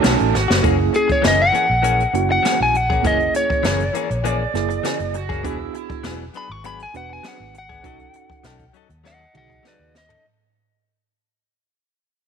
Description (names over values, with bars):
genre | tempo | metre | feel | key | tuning
straight-eighth soul blues | 100 BPM | 4/4 | straight | unclear | A4 = 444 Hz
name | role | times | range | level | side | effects
overdriven slide guitar | second line | 0.0-0.6, 4.3-6.2 s | C#4 to D5 | -26 LUFS | right 10 dB | none
reed electric piano | accompaniment | 0.0-10.0 s | C#3 to B4 | -25 LUFS | right 13 dB | medium tremolo
direct-recorded clean electric guitar | stabs | 0.0-10.3 s | D#3 to A4 | -26 LUFS | left 12 dB | none
vintage muted fingered electric bass | bass | 0.0-10.1 s | E1 to D#2 | -24 LUFS | equal | none
jazz brush drum kit | drums | 0.0-10.2 s | hi-hat, kick drum, snare drum, toms | -23 LUFS | equal | none
lightly driven lead guitar | melody | 1.0-10.3 s | G#4 to C#6 | -19 LUFS | left 1 dB | none
room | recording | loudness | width
moderate echo chamber reverb, RT60 2.0 s | 1960s-style stereo with parts hard left and right | -16 LUFS | side -7 dB against mid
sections
0.0-10.2 A section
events
fade-out 0.0-10.2; drum fill 0.3-0.6, 9.0-10.2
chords
0.0 B9; 0.6 F#9; 5.4 E9; 7.8 B9